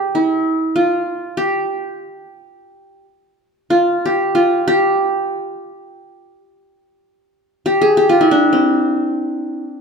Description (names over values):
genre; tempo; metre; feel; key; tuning
Turkish makam ensemble; free time; none; none; G makam hicaz; A4 = 440 Hz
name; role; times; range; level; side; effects
qanun; solo; 0.0-9.8 s; C4 to Ab4; -14 LUFS; equal; none
room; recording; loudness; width
moderate recital hall reverb, RT60 1.8 s; minimal, uncompressed stereo recording; -14 LUFS; side -5 dB against mid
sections
0.0-9.8 A section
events
none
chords
none